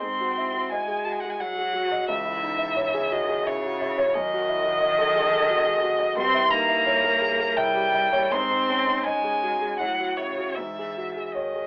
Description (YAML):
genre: classical, slow romantic movement for piano trio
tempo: 77-90 BPM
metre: 3/4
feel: rubato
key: unclear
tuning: A4 = 439 Hz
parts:
  - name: rich violin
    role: melody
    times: 0.0-11.7 s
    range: C#5 to B#5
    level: -26 LUFS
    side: equal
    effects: none
  - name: warm cello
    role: second line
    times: 0.0-11.7 s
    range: C#3 to B#3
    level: -33 LUFS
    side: equal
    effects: none
  - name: warm concert grand piano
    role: accompaniment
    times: 0.0-11.7 s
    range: C#2 to D#5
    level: -30 LUFS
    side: equal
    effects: none
room: light reverb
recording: telephone sound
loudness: -24 LUFS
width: mono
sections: 0.0-11.7 A section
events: none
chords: 0.0 G#7; 2.1 C#m; 4.1 D#dim/F#; 6.2 Gdim7; 8.3 G#; 9.8 F#m/A; 10.6 G#sus4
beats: | 0.02 0.72 1.41 | 2.10 2.78 3.48 | 4.15 4.82 5.50 | 6.18 6.88 7.58 | 8.33 9.05 9.80 | 10.57 11.34